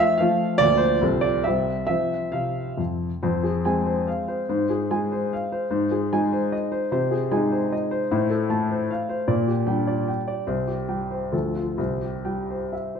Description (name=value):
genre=classical, romantic triple-time dance for piano with dotted rhythms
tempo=123-159 BPM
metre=3/4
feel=rubato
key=F major, F minor from 3.2 s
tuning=A4 = 437 Hz
part: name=warm baby grand piano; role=solo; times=0.0-13.0 s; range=C2 to A5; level=-21 LUFS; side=equal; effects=none
room=wet recital hall reverb, RT60 1.4 s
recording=dark, warm production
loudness=-21 LUFS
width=side -6 dB against mid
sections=0.0-3.2 A section; 3.2-13.0 B section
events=none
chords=0.0 F; 0.6 Bb/D; 1.0 F/C; 1.5 C; 1.9 F5; 3.2 Fm; 4.5 Fm/Ab; 5.7 Ab; 6.9 Ab/C; 8.1 F/A; 9.3 Gm/Bb; 10.5 C5; 11.3 Dm; 11.8 C